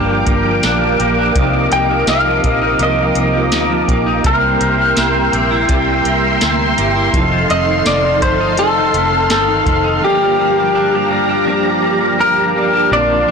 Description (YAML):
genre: dream pop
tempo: 83 BPM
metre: 4/4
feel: straight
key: G minor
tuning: A4 = 443 Hz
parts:
  - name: clean electric guitar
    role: melody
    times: 0.0-13.3 s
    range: G4 to G5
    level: -16 LUFS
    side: left 2 dB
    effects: tape echo
  - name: electric guitar at the edge of break-up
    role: accompaniment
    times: 0.0-13.3 s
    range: G2 to Bb4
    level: -21 LUFS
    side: right 7 dB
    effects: tremolo, analog chorus
  - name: ensemble organ-string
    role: sustained chords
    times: 0.0-13.3 s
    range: Bb3 to D6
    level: -17 LUFS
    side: equal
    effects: ensemble chorus
  - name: semi-hollow electric guitar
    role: arpeggios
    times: 0.0-13.3 s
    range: F2 to E4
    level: -21 LUFS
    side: left 3 dB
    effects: lush chorus, tape echo
  - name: vintage muted fingered electric bass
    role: bass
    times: 0.0-13.2 s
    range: F1 to D2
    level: -21 LUFS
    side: equal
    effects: none
  - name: soft vintage rhythm box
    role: drums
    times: 0.3-9.8 s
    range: hi-hat, kick drum, snare drum, tambourine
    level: -19 LUFS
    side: equal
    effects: none
room: light reverb, digital ambience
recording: blown-out, overdriven recording, overdrive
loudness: -12 LUFS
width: side -5 dB against mid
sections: 0.0-12.9 A section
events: none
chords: 0.0 Gm7; 1.4 Cm11; 4.2 C7; 7.1 F7; 10.0 Gm7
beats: 0.63 | 1.36 2.08 2.80 3.52 | 4.25 4.97 5.69 6.42 | 7.14 7.86 8.59 9.31 | 10.03 10.75 11.48 12.20 | 12.92